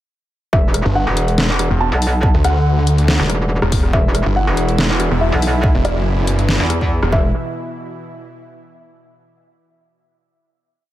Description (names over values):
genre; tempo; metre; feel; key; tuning
heavy wobble dubstep; 141 BPM; 4/4; swing 53% on 16ths, half-time; E minor; A4 = 440 Hz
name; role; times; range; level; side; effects
felt-muted upright piano; melody; 0.5-7.3 s; D5 to A5; -24 LUFS; equal; dub echo
metallic wobble bass; bass; 0.5-7.3 s; E1 to E2; -17 LUFS; equal; chorus, overdrive
electronic kick drum; drums; 0.5-7.2 s; none; -16 LUFS; equal; none
dubstep drum kit; drums; 0.7-7.1 s; hi-hat, rim click, snare drum; -21 LUFS; equal; none
snarling distorted saw bass; bass; 0.9-7.1 s; E1 to D2; -16 LUFS; equal; distortion, overdrive
supersaw pad; sustained chords; 3.9-7.3 s; B2 to E4; -25 LUFS; right 1 dB; sidechain pumping
room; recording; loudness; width
little or no reverb; none; -14 LUFS; side -14 dB against mid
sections
0.5-7.3 drop; 7.3-9.0 final hit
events
drop 0.5-7.3; band accent 7.0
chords
0.5 E5; 7.3 N.C.